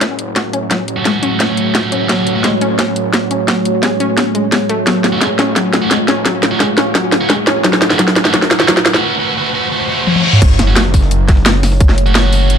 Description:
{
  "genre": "dark technical drum and bass",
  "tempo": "173 BPM",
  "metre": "4/4",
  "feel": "straight",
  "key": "F# harmonic minor",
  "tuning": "A4 = 439 Hz",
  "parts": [
    { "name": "deep dark ambient pad", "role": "sustained chords", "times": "0.0-12.6 s", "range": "A3 to C#5", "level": "-19 LUFS", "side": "right 1 dB", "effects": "chorus, built-in reverb, sidechain pumping" },
    { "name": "analog pluck", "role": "arpeggios", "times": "0.0-8.8 s", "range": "F#3 to F#4", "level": "-19 LUFS", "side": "left 3 dB", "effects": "chorus, sidechain pumping, ping-pong delay" },
    { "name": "wide detuned saw bass", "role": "bass", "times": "0.0-12.6 s", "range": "F#1 to A1", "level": "-19 LUFS", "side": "equal", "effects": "chorus, overdrive, high-pass filter" },
    { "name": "drum and bass drum kit", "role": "drums", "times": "0.0-12.6 s", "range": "crash cymbal, hi-hat, snare drum, toms", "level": "-14 LUFS", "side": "equal", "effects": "overdrive" },
    { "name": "electronic kick drum", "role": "drums", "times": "0.0-11.9 s", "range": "none", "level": "-14 LUFS", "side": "equal", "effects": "none" },
    { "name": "riser, reverse cymbal and impact", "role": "sound effects", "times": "4.5-11.8 s", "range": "none", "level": "-23 LUFS", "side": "equal", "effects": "none" },
    { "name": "scooped high-gain guitar", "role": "stabs", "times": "1.0-2.5, 5.1-12.6 s", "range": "A3 to F#4", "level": "-19 LUFS", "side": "right 3 dB", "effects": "distortion, low-pass filter, ping-pong delay" },
    { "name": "breakbeat sampler-style drum kit", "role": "drums", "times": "10.4-12.6 s", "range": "hi-hat, snare drum", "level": "-28 LUFS", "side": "left 1 dB", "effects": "none" }
  ],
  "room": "light reverb, digital ambience",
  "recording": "dark, warm production",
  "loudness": "-11 LUFS",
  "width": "side -8 dB against mid",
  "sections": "0.0-10.4 A section; 10.4-12.6 B section",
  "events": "build-up 0.0-10.4; drum fill 0.0-9.0, 10.1-10.4; break 9.0-10.4; reverse cymbal 9.7-10.4; drop 10.4-12.6; impact 10.4-11.8",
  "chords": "0.0 F#m"
}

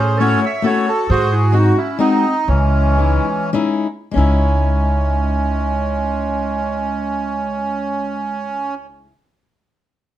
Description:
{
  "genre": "musette waltz",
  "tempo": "92-137 BPM",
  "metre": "3/4",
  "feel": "swing 54% on 8ths, rubato",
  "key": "C# harmonic minor",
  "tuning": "A4 = 442 Hz",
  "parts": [
    { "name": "bandoneon", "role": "melody", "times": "0.0-8.7 s", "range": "E3 to E5", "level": "-20 LUFS", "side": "right 2 dB", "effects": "slapback echo" },
    { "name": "warm clarinet", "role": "second line", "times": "0.0-8.7 s", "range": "G#3 to C#5", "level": "-24 LUFS", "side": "right 2 dB", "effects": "slapback echo" },
    { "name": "upright bass", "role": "bass", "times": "0.0-9.1 s", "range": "C#2 to A2", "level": "-17 LUFS", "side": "equal", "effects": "none" },
    { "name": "fingerpicked swing-style acoustic guitar", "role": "accompaniment", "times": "0.2-9.1 s", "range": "G#3 to F#4", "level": "-20 LUFS", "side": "left 5 dB", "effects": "none" }
  ],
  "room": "moderate studio reverb, RT60 0.6 s",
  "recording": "dark, warm production",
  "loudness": "-15 LUFS",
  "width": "side -12 dB against mid",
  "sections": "0.0-4.2 A section; 4.2-8.0 B section",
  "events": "slowing down 1.1-4.2",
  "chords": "0.0 A6; 1.1 G#7; 2.5 C#madd9"
}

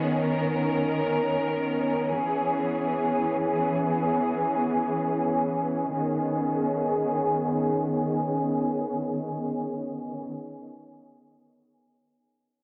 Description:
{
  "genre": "hip hop",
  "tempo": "free time",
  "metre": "none",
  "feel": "none",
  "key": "B major",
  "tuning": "A4 = 440 Hz",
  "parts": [
    { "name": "warm studio string section", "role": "solo", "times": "0.0-10.3 s", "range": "D#3 to A#4", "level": "-27 LUFS", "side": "equal", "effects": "low-pass filter, tape echo" }
  ],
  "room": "moderate lush hall reverb, RT60 3.1 s",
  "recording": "worn, warbling old tape, cassette tape, warbly pitch drift",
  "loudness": "-27 LUFS",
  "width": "mono",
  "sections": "0.0-5.9 A section; 5.9-9.7 B section",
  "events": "filter sweep on string section 0.0-5.9",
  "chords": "0.0 Badd9; 2.1 C#m7; 5.9 B69"
}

